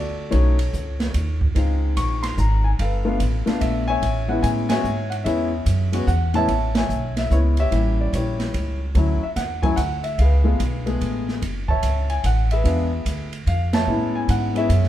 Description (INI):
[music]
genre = jazz piano trio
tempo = 146 BPM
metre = 3/4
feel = swing 65% on 8ths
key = A major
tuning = A4 = 438 Hz
[part]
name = warm concert grand piano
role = melody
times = 0.0-14.9 s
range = A2 to C#6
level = -24 LUFS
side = left 2 dB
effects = none
[part]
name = upright bass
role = bass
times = 0.0-14.9 s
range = F#1 to A2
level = -21 LUFS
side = equal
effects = none
[part]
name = open jazz drum kit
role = drums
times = 0.3-14.9 s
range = hi-hat, kick drum, ride cymbal, snare drum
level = -29 LUFS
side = right 2 dB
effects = none
[sound]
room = light reverb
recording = band playing live in one room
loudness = -19 LUFS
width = side -12 dB against mid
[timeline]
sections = 0.0-6.5 A section; 6.5-14.9 B section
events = band accent 4.6, 6.7, 13.7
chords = 0.3 B9; 1.6 C#maj7; 2.8 G9; 4.0 Amaj7; 7.7 A7b9; 9.0 Dmaj7; 10.2 C#7b13; 11.4 F#m9; 12.6 E7b9; 13.9 Amaj7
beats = | 0.32 0.73 1.14 | 1.55 1.97 2.38 | 2.79 3.20 3.61 | 4.02 4.43 4.84 | 5.25 5.67 6.08 | 6.49 6.90 7.31 | 7.72 8.13 8.54 | 8.95 9.36 9.78 | 10.19 10.60 11.01 | 11.42 11.83 12.24 | 12.65 13.06 13.47 | 13.88 14.29 14.70